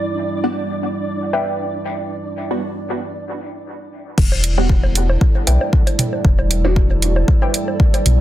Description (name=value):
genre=dub techno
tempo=116 BPM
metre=4/4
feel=swing 54% on 16ths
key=E minor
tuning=A4 = 441 Hz
part: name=dark analog pad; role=sustained chords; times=0.0-8.2 s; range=G3 to D5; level=-25 LUFS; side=right 3 dB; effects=lush chorus, sidechain pumping
part: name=flickering grainy texture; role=texture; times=0.0-8.2 s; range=A3 to D5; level=-31 LUFS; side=equal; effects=built-in reverb, sidechain pumping
part: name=filtered dub chord stab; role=stabs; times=0.4-6.7 s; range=G3 to F#4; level=-24 LUFS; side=equal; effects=phaser, vintage 12-bit sampler grit, sidechain pumping, dub echo
part: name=warbly dusty pluck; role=riff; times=1.3-1.5, 5.5-7.5 s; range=B4 to G5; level=-26 LUFS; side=left 3 dB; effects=chorus, sidechain pumping, dub echo
part: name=warm sub bass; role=bass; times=4.2-8.2 s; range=E1 to B1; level=-16 LUFS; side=equal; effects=sidechain pumping
part: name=electronic kick drum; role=drums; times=4.2-7.9 s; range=none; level=-14 LUFS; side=equal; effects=none
part: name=punchy analog drum machine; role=drums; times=4.2-8.2 s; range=crash cymbal, hi-hat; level=-22 LUFS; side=right 1 dB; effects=overdrive
part: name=electronic bongos and toms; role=percussion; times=4.3-8.2 s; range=none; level=-25 LUFS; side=right 1 dB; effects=sidechain pumping on perc, sidechain pumping on toms, dub echo
room=light reverb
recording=dense, heavily limited modern master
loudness=-15 LUFS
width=side -13 dB against mid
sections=0.0-4.2 A section; 4.2-8.2 B section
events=break 3.1-4.2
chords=0.0 Em7